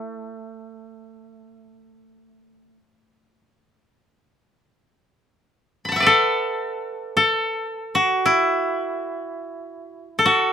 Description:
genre	japanese traditional, Japanese chamber music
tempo	free time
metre	none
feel	none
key	E suspended pentatonic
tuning	A4 = 445 Hz
part	koto	solo	0.0-10.5 s	A3 to B5	-19 LUFS	equal	none
room	light reverb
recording	minimal, uncompressed stereo recording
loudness	-19 LUFS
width	side -8 dB against mid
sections	0.0-10.5 A section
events	none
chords	none

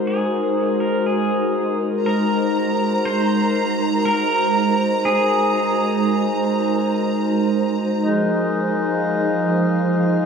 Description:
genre	ambient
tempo	60 BPM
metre	3/4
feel	straight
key	Ab mixolydian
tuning	A4 = 439 Hz
part	pedal steel guitar	melody	0.0-7.0 s	Ab4 to C5	-24 LUFS	equal	tape echo
part	glassy FM pad	sustained chords	0.0-10.3 s	F3 to F5	-19 LUFS	right 1 dB	ensemble chorus, built-in reverb
part	bright studio violin section	texture	2.0-8.0 s	Bb5	-26 LUFS	right 1 dB	none
part	hand-pumped harmonium	drone	8.0-10.3 s	Ab3 to Eb4	-22 LUFS	left 2 dB	stereo widening
room	wet spring reverb, RT60 2.5 s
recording	echo-heavy mix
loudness	-17 LUFS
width	side -6 dB against mid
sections	0.0-8.0 A section; 8.0-10.3 B section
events	fade-in on pedal steel guitar 0.0-8.0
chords	0.0 Ab9; 8.0 Fm7

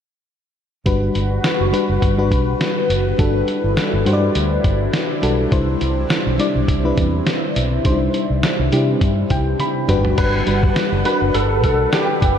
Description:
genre	1980s-style pop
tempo	103 BPM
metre	4/4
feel	swing 55% on 16ths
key	G major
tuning	A4 = 443 Hz
part	FM electric piano with auto-pan	accompaniment	0.9-12.4 s	G3 to B5	-20 LUFS	left 2 dB	none
part	phased analog pad	sustained chords	0.9-12.4 s	C3 to F#5	-24 LUFS	equal	phaser, chorus
part	vintage muted fingered electric bass	bass	0.9-12.4 s	F#1 to C3	-20 LUFS	equal	none
part	lo-fi sampler-style drum kit	drums	0.9-12.4 s	crash cymbal, hi-hat, kick drum, snare drum, toms	-21 LUFS	equal	none
part	warm concert grand piano	melody	10.2-12.4 s	G4 to B4	-20 LUFS	right 1 dB	ensemble chorus, ping-pong delay
room	moderate cathedral reverb, RT60 5.8 s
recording	dreamy mix soaked in reverb, lossy compression artefacts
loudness	-15 LUFS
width	side -8 dB against mid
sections	0.9-10.2 A section; 10.2-12.4 B section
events	FM electric piano fill 9.0-10.2; drum fill 9.6-10.2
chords	0.9 Gmaj7; 5.5 Cadd9; 9.9 Gmaj7

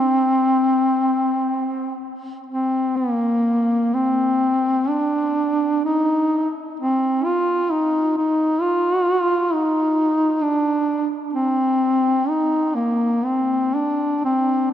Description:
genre	caucasian folk, Caucasian lament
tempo	60-67 BPM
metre	3/4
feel	rubato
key	C minor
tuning	A4 = 441 Hz
part	mellow duduk	solo	0.0-14.7 s	Bb3 to F4	-18 LUFS	equal	tape echo
room	moderate church reverb, RT60 3.6 s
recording	none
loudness	-18 LUFS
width	side -10 dB against mid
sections	0.0-3.0 A section; 3.0-14.7 B section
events	none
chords	none

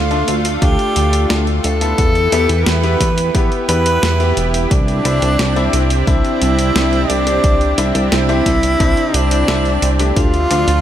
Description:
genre	synthwave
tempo	88 BPM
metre	4/4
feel	straight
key	C major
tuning	A4 = 441 Hz
part	warm tenor saxophone	melody	0.0-10.8 s	D4 to B4	-18 LUFS	equal	ping-pong delay
part	lush unison pad	sustained chords	0.0-10.8 s	C3 to G4	-21 LUFS	right 2 dB	chorus, sidechain pumping
part	chorused synth bass	bass	0.0-10.8 s	E1 to E2	-17 LUFS	equal	tube saturation, sidechain pumping
part	bright baby grand piano	stabs	0.1-10.7 s	A3 to A4	-22 LUFS	left 4 dB	ping-pong delay
part	clean 12-bit digital drum machine	drums	0.1-10.8 s	hi-hat, snare drum	-22 LUFS	equal	studio ambience
part	electronic kick drum	drums	0.6-10.3 s	none	-16 LUFS	equal	studio ambience
room	light reverb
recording	none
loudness	-12 LUFS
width	side -11 dB against mid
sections	0.0-10.8 A section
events	none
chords	0.0 Dm; 2.0 Em; 4.7 Cadd9; 10.2 Dm

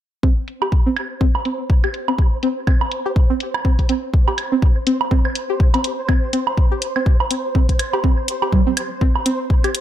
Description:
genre	minimal techno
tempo	123 BPM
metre	4/4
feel	swing 58% on 16ths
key	unclear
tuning	A4 = 438 Hz
part	string-like resonator pluck	riff	0.2-9.7 s	C4 to G4	-23 LUFS	equal	chorus, phaser, sidechain pumping, dub echo
part	electronic kick drum	drums	0.2-9.6 s	none	-15 LUFS	equal	none
part	flickering grainy texture	texture	0.9-9.8 s	C5	-29 LUFS	right 1 dB	built-in reverb, sidechain pumping
part	electronic hi-hat	drums	0.5-9.8 s	none	-25 LUFS	left 2 dB	low-pass filter on hats
part	woodblock and congas	percussion	0.6-9.7 s	none	-24 LUFS	right 6 dB	dub echo
room	digital ambience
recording	none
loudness	-16 LUFS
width	side -11 dB against mid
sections	0.2-9.8 A section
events	filter sweep on synth pluck 0.2-9.8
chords	0.2 C5

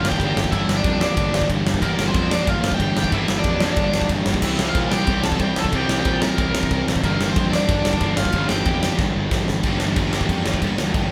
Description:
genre	punk rock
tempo	184 BPM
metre	4/4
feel	straight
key	G dorian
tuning	A4 = 441 Hz
part	overdriven electric guitar	melody	0.0-9.0 s	Bb3 to Bb5	-27 LUFS	equal	none
part	sludgy distorted guitar	riff	0.0-11.1 s	G2 to C4	-29 LUFS	equal	overdrive
part	sludgy distorted guitar	riff	0.0-11.1 s	G2 to C4	-31 LUFS	equal	none
part	sludgy distorted guitar	riff	0.0-11.1 s	G2 to G4	-30 LUFS	equal	overdrive
part	fuzz picked electric bass	bass	0.0-11.1 s	G1 to Bb2	-28 LUFS	equal	overdrive
part	big rock drum kit	drums	0.0-11.0 s	crash cymbal, kick drum, ride cymbal, snare drum	-24 LUFS	equal	none
room	light reverb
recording	band playing live in one room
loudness	-20 LUFS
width	mono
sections	0.0-9.6 A section; 9.6-11.1 B section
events	drum fill 9.0-9.6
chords	0.0 Gm; 4.4 C; 7.0 Gm

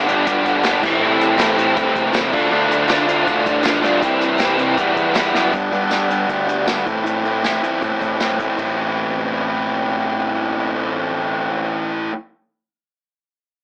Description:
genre	indie rock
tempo	158 BPM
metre	4/4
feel	straight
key	A minor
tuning	A4 = 440 Hz
part	mellow tonewheel organ	sustained chords	0.0-5.5 s	E4 to B5	-29 LUFS	equal	none
part	biting overdriven guitar	riff	0.0-5.5 s	G2 to F4	-22 LUFS	equal	ensemble chorus, tape echo
part	fuzz guitar	riff	0.0-12.1 s	G2 to F4	-21 LUFS	equal	distortion
part	growling picked electric bass	bass	0.0-12.1 s	G1 to A2	-30 LUFS	equal	overdrive
part	unplugged drum kit	drums	0.0-8.7 s	crash cymbal, hi-hat, kick drum, snare drum, tambourine	-26 LUFS	equal	none
part	group handclap	percussion	0.6-5.2 s	none	-33 LUFS	equal	none
room	moderate small room reverb, RT60 0.5 s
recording	AM radio sound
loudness	-18 LUFS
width	mono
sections	0.0-5.5 A section; 5.5-8.6 B section; 8.6-11.7 C section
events	drum fill 5.3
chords	0.0 G7; 0.8 Am7; 2.3 Dm7; 4.0 Cmaj7; 4.8 Em7; 5.5 G; 6.9 Am

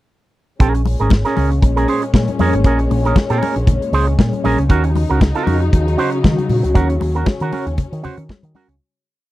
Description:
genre	disco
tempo	117 BPM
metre	4/4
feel	swing 56% on 16ths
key	Bb minor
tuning	A4 = 440 Hz
part	electric guitar with an envelope filter	accompaniment	0.6-8.7 s	Db4 to C5	-19 LUFS	right 4 dB	none
part	dark studio string section	sustained chords	0.6-8.8 s	Bb2 to Eb4	-22 LUFS	left 3 dB	none
part	picked electric bass with an envelope filter	bass	0.6-8.8 s	Ab1 to Eb3	-17 LUFS	equal	none
part	modern studio drum kit	drums	0.6-8.8 s	hi-hat, kick drum, snare drum	-13 LUFS	equal	none
part	congas	percussion	0.6-8.7 s	none	-23 LUFS	left 6 dB	none
room	little or no reverb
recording	dry, close 1970s-style studio recording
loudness	-13 LUFS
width	side -16 dB against mid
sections	0.6-8.8 groove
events	fade-out 6.8-8.8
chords	0.6 Bbm7; 4.7 Ebm7

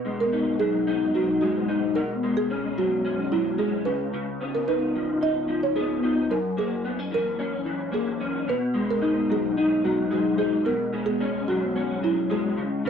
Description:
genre	indie pop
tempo	110 BPM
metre	4/4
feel	straight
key	B major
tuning	A4 = 442 Hz
part	buzzing marimba with soft mallets	melody	0.0-12.9 s	E4 to D#5	-28 LUFS	right 5 dB	wide subtle chorus, analog delay
part	electric guitar through a small old amp	accompaniment	0.0-12.9 s	F#2 to D#4	-24 LUFS	left 2 dB	ensemble chorus, warbly pitch drift
room	wet small room reverb, RT60 0.5 s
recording	dark, warm production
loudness	-22 LUFS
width	side -7 dB against mid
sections	0.0-12.9 A section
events	none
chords	0.0 B6; 1.9 G#m11/B; 3.9 C#9; 6.3 F#7; 8.5 B6; 10.7 G#m11/B

